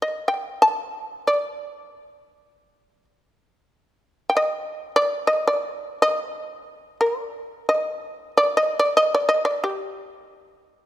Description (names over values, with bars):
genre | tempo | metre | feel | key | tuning
japanese traditional, Japanese chamber music | free time | none | none | unclear | A4 = 440 Hz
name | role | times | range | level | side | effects
shamisen | solo | 0.0-10.9 s | G4 to A5 | -20 LUFS | equal | none
room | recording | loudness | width
light reverb | minimal, uncompressed stereo recording | -20 LUFS | side -13 dB against mid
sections
0.0-10.9 A section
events
slowing down 6.4-10.9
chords
none